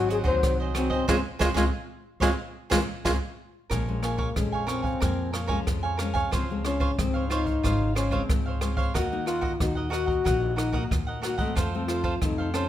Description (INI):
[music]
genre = samba and choro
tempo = 92 BPM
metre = 4/4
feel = straight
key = Db major, Bb minor from 3.7 s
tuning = A4 = 439 Hz
[part]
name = breathy trombone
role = melody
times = 0.0-12.7 s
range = Ab3 to C5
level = -29 LUFS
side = left 3 dB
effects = plate reverb
[part]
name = mellow tenor saxophone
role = second line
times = 0.0-3.1 s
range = Gb3 to Ab3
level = -32 LUFS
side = right 4 dB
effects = none
[part]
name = cavaquinho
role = accompaniment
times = 0.0-12.7 s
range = F4 to Ab5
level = -32 LUFS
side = right 4 dB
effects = none
[part]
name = nylon-string guitar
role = accompaniment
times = 0.0-12.7 s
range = F2 to Gb4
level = -32 LUFS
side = left 4 dB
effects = none
[part]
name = upright bass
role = bass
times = 0.0-12.7 s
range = Ab1 to F2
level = -30 LUFS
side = equal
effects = none
[part]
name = jazz brush drum kit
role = drums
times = 0.1-12.7 s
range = hi-hat, kick drum, rim click, snare drum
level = -30 LUFS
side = right 1 dB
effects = none
[sound]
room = light reverb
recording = none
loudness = -24 LUFS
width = side -12 dB against mid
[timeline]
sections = 0.0-3.7 A section; 3.7-12.7 B section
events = band accent 1.1-3.7; trombone solo 3.7-12.7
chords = 0.0 Ab7; 1.1 Dbmaj7(no3); 3.7 Bbm7; 6.3 Dbmaj7; 8.9 Ebm; 11.6 F